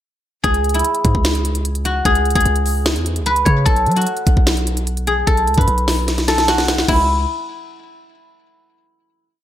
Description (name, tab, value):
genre	hip hop, trap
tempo	149 BPM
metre	4/4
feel	half-time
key	C# minor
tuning	A4 = 439 Hz
part	guzheng	melody	0.4-7.1 s	E4 to C#5	-18 LUFS	left 1 dB	low-pass filter, digital delay
part	hard-hitting 808-style bass	bass	0.4-7.3 s	B1 to F#3	-19 LUFS	equal	none
part	trap drum kit	drums	0.4-7.0 s	crash cymbal, hi-hat, kick drum, snare drum	-18 LUFS	equal	gated reverb
room	light reverb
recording	bright 1980s-style digital production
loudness	-14 LUFS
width	side -11 dB against mid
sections	0.4-6.9 hook; 6.9-8.5 final chord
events	drum fill 6.1-6.9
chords	0.4 C#m; 3.7 B5; 6.9 N.C.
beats	| 0.44 0.84 1.25 1.65 | 2.05 2.46 2.86 3.26 | 3.66 4.07 4.47 4.87 | 5.27 5.68 6.08 6.48 | 6.88